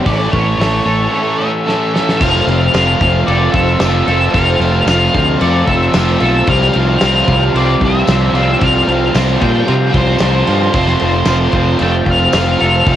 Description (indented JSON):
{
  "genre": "rock, shoegaze and dream pop",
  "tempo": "112 BPM",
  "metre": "4/4",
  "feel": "straight",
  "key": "F major",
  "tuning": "A4 = 440 Hz",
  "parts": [
    { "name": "phased string machine", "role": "sustained chords", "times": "0.0-13.0 s", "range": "F4 to C#6", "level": "-28 LUFS", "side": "right 1 dB", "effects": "none" },
    { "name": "twangy electric guitar", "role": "arpeggios", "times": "0.0-13.0 s", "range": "G3 to A4", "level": "-23 LUFS", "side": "equal", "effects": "lush chorus, cassette tape, analog delay" },
    { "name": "crunchy overdriven guitar", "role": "riff", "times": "0.0-13.0 s", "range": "F2 to A4", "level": "-18 LUFS", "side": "right 7 dB", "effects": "reverse reverb, cassette tape" },
    { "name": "distorted electric guitar", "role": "riff", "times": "0.0-13.0 s", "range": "F2 to C4", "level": "-21 LUFS", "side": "left 1 dB", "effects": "overdrive, cassette tape" },
    { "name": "raw garage guitar", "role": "riff", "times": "0.0-13.0 s", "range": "F2 to A4", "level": "-20 LUFS", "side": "left 7 dB", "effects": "overdrive, lush chorus, cassette tape" },
    { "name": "octave-fuzz lead guitar", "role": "melody", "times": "0.1-13.0 s", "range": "C5 to G5", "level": "-17 LUFS", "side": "left 1 dB", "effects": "distortion, cassette tape, analog delay" },
    { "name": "fingered electric bass", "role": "bass", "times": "0.1-13.0 s", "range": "F1 to C3", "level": "-16 LUFS", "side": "equal", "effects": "none" },
    { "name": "loose indie drum kit", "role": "drums", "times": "0.1-13.0 s", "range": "crash cymbal, hi-hat, kick drum, snare drum", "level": "-19 LUFS", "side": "equal", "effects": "cassette tape" },
    { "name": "tambourine", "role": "percussion", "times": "2.7-12.5 s", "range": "none", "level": "-32 LUFS", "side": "left 9 dB", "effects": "none" }
  ],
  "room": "little or no reverb",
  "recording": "home recording on cassette",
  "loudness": "-10 LUFS",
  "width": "side -11 dB against mid",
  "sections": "0.0-2.2 A section; 2.2-13.0 B section",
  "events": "drum fill 1.7-2.2",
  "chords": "0.1 A; 2.2 F; 6.5 Csus4; 10.7 F"
}